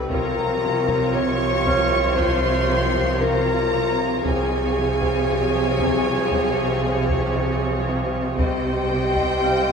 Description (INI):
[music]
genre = cinematic, suspense film score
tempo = 58 BPM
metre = 4/4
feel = straight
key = unclear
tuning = A4 = 436 Hz
[part]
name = rich studio violin section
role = melody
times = 0.0-9.7 s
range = Db5 to Eb5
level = -31 LUFS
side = left 2 dB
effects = none
[part]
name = rich studio viola section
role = accompaniment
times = 0.0-9.7 s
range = F3 to C5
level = -28 LUFS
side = right 1 dB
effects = none
[part]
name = glass harmonica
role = sustained chords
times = 0.0-9.7 s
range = F4 to Db6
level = -30 LUFS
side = left 1 dB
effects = none
[part]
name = bright studio double bass section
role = bass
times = 0.0-9.7 s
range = C2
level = -30 LUFS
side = right 2 dB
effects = none
[part]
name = rich studio cello section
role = bass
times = 0.0-9.7 s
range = C3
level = -26 LUFS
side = right 2 dB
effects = none
[part]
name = sub bass with octave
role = drone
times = 0.0-9.7 s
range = C2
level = -30 LUFS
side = left 1 dB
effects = none
[part]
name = vibraphone with medium mallets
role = texture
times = 0.0-9.7 s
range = F5 to F6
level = -35 LUFS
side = right 3 dB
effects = none
[part]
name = mellow clarinet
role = second line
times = 0.1-9.7 s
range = G4 to Db5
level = -24 LUFS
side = left 1 dB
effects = none
[part]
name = rich studio violin section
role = second line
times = 0.1-9.7 s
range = G5 to Db6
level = -28 LUFS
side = left 1 dB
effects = none
[part]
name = rich studio cello section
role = riff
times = 0.1-9.7 s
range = C3 to C4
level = -31 LUFS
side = right 1 dB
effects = none
[part]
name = taiko ensemble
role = drums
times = 0.1-9.7 s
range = none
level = -30 LUFS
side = equal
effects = none
[sound]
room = wet scoring stage reverb, RT60 2.0 s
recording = none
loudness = -18 LUFS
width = side -6 dB against mid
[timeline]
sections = 0.0-9.7 A section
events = none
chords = 0.1 Bbm/C; 4.3 Db/C; 8.4 Cm